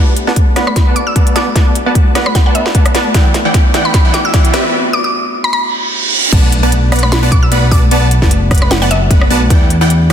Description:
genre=future bass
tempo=151 BPM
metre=4/4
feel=swing 55% on 16ths, half-time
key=B minor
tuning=A4 = 438 Hz
part: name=Celtic harp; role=arpeggios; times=0.0-10.1 s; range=A3 to B4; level=-22 LUFS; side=left 3 dB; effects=sidechain pumping, low-pass filter, digital delay
part: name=supersaw stab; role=riff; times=0.0-10.1 s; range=E3 to B5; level=-16 LUFS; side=right 1 dB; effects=sidechain pumping, low-pass filter, digital delay
part: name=riser, reverse cymbal and impact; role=sound effects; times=0.0-7.9 s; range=none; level=-20 LUFS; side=right 3 dB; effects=none
part: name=trap drum kit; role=drums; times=0.2-10.1 s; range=crash cymbal, hi-hat, rim click, snare drum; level=-19 LUFS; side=equal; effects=soft clipping on snare, high-pass filter on snare, high-pass filter on hats, high-pass filter on cymbals
part: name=electronic kick drum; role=drums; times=0.4-9.6 s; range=none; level=-10 LUFS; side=equal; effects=none
part: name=mallet-like synth pluck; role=melody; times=0.7-9.2 s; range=E5 to E6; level=-18 LUFS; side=equal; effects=chorus, sidechain pumping, tape echo
part: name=fat analog bass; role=bass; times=6.3-10.1 s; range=F#1 to E2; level=-12 LUFS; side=equal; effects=sidechain pumping
room=light reverb, digital ambience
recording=dense, heavily limited modern master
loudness=-9 LUFS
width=side -9 dB against mid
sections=0.0-6.3 A section; 6.3-10.1 B section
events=build-up 0.0-6.3; drum fill 0.0-4.7; filter sweep on supersaw synth 0.0-6.3; break 4.7-6.3; reverse cymbal 5.7-6.3; drop 6.3-10.1; impact 6.3-7.9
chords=0.0 Bm7; 3.1 Em9; 4.5 Cmaj7 (rootless); 6.3 Bm7; 9.5 Em9

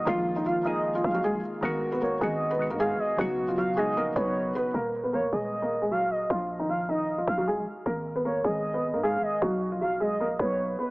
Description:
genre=hip hop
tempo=154 BPM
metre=4/4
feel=half-time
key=Eb minor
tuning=A4 = 441 Hz
part: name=felt-muted upright piano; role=melody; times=0.0-10.9 s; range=Eb3 to Cb5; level=-28 LUFS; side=equal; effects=low-pass filter, tape echo
part: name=gliding portamento lead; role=second line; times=0.0-10.9 s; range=B4 to F5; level=-30 LUFS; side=right 1 dB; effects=chorus, tape echo
part: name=soft electric-piano-like synth keys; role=accompaniment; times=0.0-4.8 s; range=C#3 to Ab4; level=-32 LUFS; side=left 1 dB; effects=chorus
part: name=growling 808-style bass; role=bass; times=0.0-10.8 s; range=Eb1 to Ab2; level=-34 LUFS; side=equal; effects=none
room=light reverb, digital ambience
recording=small speaker sound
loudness=-25 LUFS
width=side -23 dB against mid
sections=0.0-4.7 A section; 4.7-10.9 B section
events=filter sweep on felt piano 4.7-10.9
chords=0.1 Bb7sus4; 1.6 Abm7; 3.2 Bsus2; 4.7 Ebm; 6.3 Bbsus4; 7.9 Abm; 9.4 Bsus2

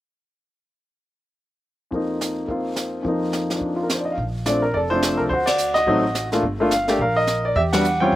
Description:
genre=jazz piano trio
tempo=213 BPM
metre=4/4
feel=swing 60% on 8ths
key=unclear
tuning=A4 = 439 Hz
part: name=warm baby grand piano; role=melody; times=1.9-8.2 s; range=F2 to G5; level=-19 LUFS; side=equal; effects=slapback echo
part: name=jazz brush drum kit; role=drums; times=1.9-8.2 s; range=brushed snare drum, hi-hat, kick drum, ride cymbal, snare drum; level=-28 LUFS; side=right 1 dB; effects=none
part: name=upright bass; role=bass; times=4.2-8.2 s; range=F1 to E2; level=-28 LUFS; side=equal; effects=none
room=little or no reverb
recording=recorded outdoors, with no room sound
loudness=-19 LUFS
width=side -14 dB against mid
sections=1.9-4.2 A section; 4.2-8.2 B section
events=band accent 5.4, 7.7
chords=1.9 F7sus4; 4.2 Bbmaj9; 5.3 D7b9; 6.4 Gm7; 7.6 Em

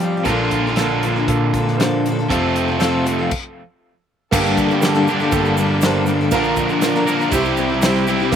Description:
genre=folk rock and heartland rock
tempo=119 BPM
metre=4/4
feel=straight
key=G dorian from 4.3 s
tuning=A4 = 440 Hz
part: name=picked steel-string acoustic guitar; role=accompaniment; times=0.0-8.4 s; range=G2 to Bb4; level=-21 LUFS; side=left 6 dB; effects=none
part: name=crunchy overdriven guitar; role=riff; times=0.0-8.4 s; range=F2 to Bb4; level=-19 LUFS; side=right 1 dB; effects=none
part: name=hollow-body short-scale picked electric bass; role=bass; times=0.0-8.4 s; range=F1 to F3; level=-26 LUFS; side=equal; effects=none
part: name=natural country drum kit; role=drums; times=0.0-8.4 s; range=crash cymbal, hi-hat, kick drum, snare drum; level=-24 LUFS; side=equal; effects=none
part: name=clear upright piano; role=accompaniment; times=0.2-8.4 s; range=Bb3 to C5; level=-23 LUFS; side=right 6 dB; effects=none
part: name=muted studio string section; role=sustained chords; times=4.3-8.3 s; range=Bb3 to C5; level=-28 LUFS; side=left 1 dB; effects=none
part: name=egg shaker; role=percussion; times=4.3-8.4 s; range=none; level=-35 LUFS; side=right 8 dB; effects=none
room=little or no reverb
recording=recorded outdoors, with no room sound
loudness=-15 LUFS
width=side -8 dB against mid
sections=0.0-4.3 A section; 4.3-8.4 B section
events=stop 3.3-4.3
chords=0.3 Bbmaj7; 2.3 F; 4.3 Gmadd9; 6.3 Bb; 7.3 C

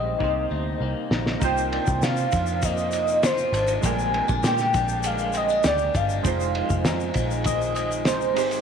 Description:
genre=indie pop, bedroom pop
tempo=99 BPM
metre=4/4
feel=straight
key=C minor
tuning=A4 = 440 Hz
part: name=warm velvety synth lead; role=melody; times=0.0-8.5 s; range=C5 to Ab5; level=-25 LUFS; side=equal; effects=lush chorus, tape echo
part: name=chorused retro synth keys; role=accompaniment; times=0.0-8.6 s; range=D3 to C5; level=-30 LUFS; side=right 11 dB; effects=tremolo
part: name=electric guitar at the edge of break-up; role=accompaniment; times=0.0-8.6 s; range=F2 to G4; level=-31 LUFS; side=left 12 dB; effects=wide subtle chorus, vibrato effect
part: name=vintage muted picked electric bass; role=bass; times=0.0-8.6 s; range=F1 to C3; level=-28 LUFS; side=equal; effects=none
part: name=cloth-damped thuddy drum kit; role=drums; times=0.2-8.6 s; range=hi-hat, kick drum, ride cymbal, snare drum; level=-27 LUFS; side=equal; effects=none
part: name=tube shaker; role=percussion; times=1.4-8.6 s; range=none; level=-38 LUFS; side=left 16 dB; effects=none
room=light reverb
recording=1960s-style stereo with parts hard left and right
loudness=-21 LUFS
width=side -7 dB against mid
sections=0.0-1.4 A section; 1.4-8.6 B section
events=drum fill 0.2-1.4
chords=0.2 Cm7; 1.4 Cm11; 3.8 Bb13; 6.2 Fm7

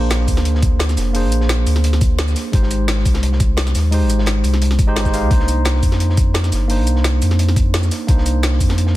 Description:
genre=liquid drum and bass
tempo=173 BPM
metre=4/4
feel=straight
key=C minor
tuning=A4 = 440 Hz
part: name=barky tine electric piano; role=accompaniment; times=0.0-9.0 s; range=Ab3 to F5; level=-22 LUFS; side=right 2 dB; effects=digital delay
part: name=warm sub bass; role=bass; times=0.0-9.0 s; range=F1 to F2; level=-16 LUFS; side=equal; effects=none
part: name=crunchy breakbeat drum kit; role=drums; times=0.1-8.9 s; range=hi-hat, snare drum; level=-31 LUFS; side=equal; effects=high-pass filter on hats, high-pass filter on snare, high-pass filter on room
part: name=drum and bass drum kit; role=drums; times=0.1-8.9 s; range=hi-hat, shaker, snare drum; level=-24 LUFS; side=equal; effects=overdrive
part: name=electronic kick drum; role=drums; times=0.3-8.7 s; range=none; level=-16 LUFS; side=equal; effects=overdrive
room=digital ambience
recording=dense, heavily limited modern master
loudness=-14 LUFS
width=side -16 dB against mid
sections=0.0-9.0 A section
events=none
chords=0.0 Bb9; 2.5 Abmaj7; 5.3 Cm9

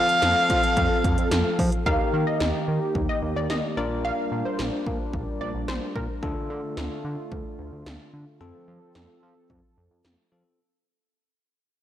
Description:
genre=synth-pop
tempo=110 BPM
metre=4/4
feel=straight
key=F mixolydian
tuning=A4 = 438 Hz
part: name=warm erhu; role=melody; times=0.0-1.5 s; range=F5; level=-22 LUFS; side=equal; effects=analog delay
part: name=bell-like tine electric piano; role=accompaniment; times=0.0-10.6 s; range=C4 to Bb4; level=-32 LUFS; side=left 4 dB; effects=none
part: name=warm analog pad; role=sustained chords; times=0.0-10.6 s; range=D3 to A4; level=-31 LUFS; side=right 1 dB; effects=chorus
part: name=chorused synth bass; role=bass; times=0.0-10.4 s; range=Bb1 to F3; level=-29 LUFS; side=equal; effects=transformer saturation
part: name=80s electronic pad drums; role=drums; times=0.1-10.2 s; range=hi-hat, kick drum, snare drum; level=-28 LUFS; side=equal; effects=none
part: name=funky polysynth comp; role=second line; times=1.9-6.1 s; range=Bb4 to F5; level=-31 LUFS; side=right 1 dB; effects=chorus, analog delay
room=moderate plate reverb, RT60 2.6 s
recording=blown-out, overdriven recording, overdrive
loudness=-22 LUFS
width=side -11 dB against mid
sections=0.0-1.9 A section; 1.9-10.6 B section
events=fade-out 1.9-10.6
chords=0.0 F; 1.9 Eb; 3.8 Bb6; 6.2 Dm; 8.4 F

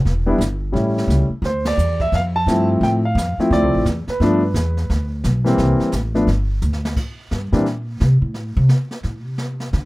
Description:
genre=jazz piano trio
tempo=174 BPM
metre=4/4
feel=swing 63% on 8ths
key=unclear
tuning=A4 = 440 Hz
part: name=upright bass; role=bass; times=0.0-9.9 s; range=E1 to D3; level=-18 LUFS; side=equal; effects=none
part: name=jazz brush drum kit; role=drums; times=0.1-9.9 s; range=brushed snare drum, crash cymbal, hi-hat, kick drum, ride cymbal, snare drum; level=-29 LUFS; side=equal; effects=none
part: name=warm concert grand piano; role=melody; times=0.3-7.6 s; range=E3 to A5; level=-18 LUFS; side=equal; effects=none
room=light reverb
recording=rough home demo mix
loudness=-16 LUFS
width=side -20 dB against mid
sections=0.0-7.0 A section; 7.0-9.9 B section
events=band accent 1.6; drum fill 6.6-7.0; upright bass solo 7.0-9.9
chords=0.1 Em; 0.7 A7; 1.4 Dm7; 4.2 G; 5.6 C7; 6.3 G5; 7.0 C7(no3); 8.3 Am

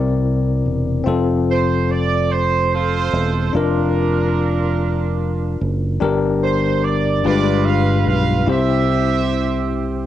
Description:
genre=slow gospel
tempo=49 BPM (dotted quarters)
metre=6/8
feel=straight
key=F major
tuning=A4 = 439 Hz
part: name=bell-like tine electric piano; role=accompaniment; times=0.0-10.1 s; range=G2 to D5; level=-20 LUFS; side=left 5 dB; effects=medium stereo tremolo
part: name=fingered electric bass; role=bass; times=0.0-10.1 s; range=E1 to C2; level=-20 LUFS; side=right 1 dB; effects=none
part: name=warm horn section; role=melody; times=1.5-10.1 s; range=D4 to F5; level=-21 LUFS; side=right 6 dB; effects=none
room=light reverb, studio reverb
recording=home recording on cassette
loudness=-16 LUFS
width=side -12 dB against mid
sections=0.0-1.1 A section; 1.1-10.1 B section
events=none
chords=0.0 C9; 1.1 F; 3.5 Bb/F; 6.0 Gm; 7.2 G7b9; 8.5 C

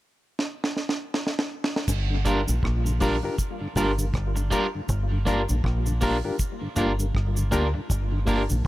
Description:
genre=roots reggae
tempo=80 BPM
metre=4/4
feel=swing 59% on 16ths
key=G minor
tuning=A4 = 440 Hz
part: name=deep reggae drum kit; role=drums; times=0.4-8.7 s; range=crash cymbal, hi-hat, kick drum, rim click, snare drum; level=-28 LUFS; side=equal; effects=tape echo
part: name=deep dub fingered electric bass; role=bass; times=1.9-8.7 s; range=G1 to D2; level=-25 LUFS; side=equal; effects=none
part: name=cabasa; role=percussion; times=1.9-8.6 s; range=none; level=-36 LUFS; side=right 2 dB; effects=none
part: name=mellow tonewheel organ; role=accompaniment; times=2.1-8.6 s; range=G2 to F4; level=-33 LUFS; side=left 1 dB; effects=overdrive, chorus vibrato, slow rotary speaker, tape echo
part: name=electric guitar at the edge of break-up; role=accompaniment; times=2.2-8.4 s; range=G3 to Bb4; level=-30 LUFS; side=right 3 dB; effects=dub echo
part: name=barky reed electric piano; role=stabs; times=2.3-8.4 s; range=D4 to Bb4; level=-30 LUFS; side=left 3 dB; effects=overdrive, fast tremolo
room=small room ambience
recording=none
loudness=-23 LUFS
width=side -16 dB against mid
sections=0.0-1.9 A section; 1.9-8.7 B section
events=drum fill 0.4-1.9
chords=0.0 N.C.; 1.9 Gm7

